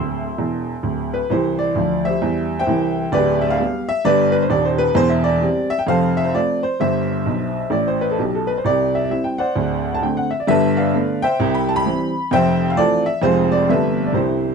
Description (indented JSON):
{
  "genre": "jazz, stride piano",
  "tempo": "131 BPM",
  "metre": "4/4",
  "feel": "swing 62% on 8ths",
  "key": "C major",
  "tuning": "A4 = 440 Hz",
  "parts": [
    { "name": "clear upright piano", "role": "solo", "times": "0.0-14.5 s", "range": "D1 to E6", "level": "-16 LUFS", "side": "equal", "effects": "none" }
  ],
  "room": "light reverb",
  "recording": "close, detailed microphones",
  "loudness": "-16 LUFS",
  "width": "side -5 dB against mid",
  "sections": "0.0-1.3 A section; 1.3-14.5 A section",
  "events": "upright piano fill 0.0-1.3, 7.3-8.6",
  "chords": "0.0 C; 3.1 G/D; 5.0 C/E; 5.9 F; 6.8 C/G; 7.7 Am11; 8.6 C; 9.6 D5; 10.5 G9; 11.4 C; 12.3 Fmaj7; 13.2 Fm; 13.7 G13",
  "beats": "0.39 0.84 | 1.30 1.76 2.22 2.68 | 3.13 3.59 4.05 4.51 | 4.97 5.43 5.88 6.34 | 6.80 7.26 7.72 8.18 | 8.64 9.10 9.56 10.02 | 10.48 10.94 11.39 11.85 | 12.31 12.77 13.23 13.69 | 14.15"
}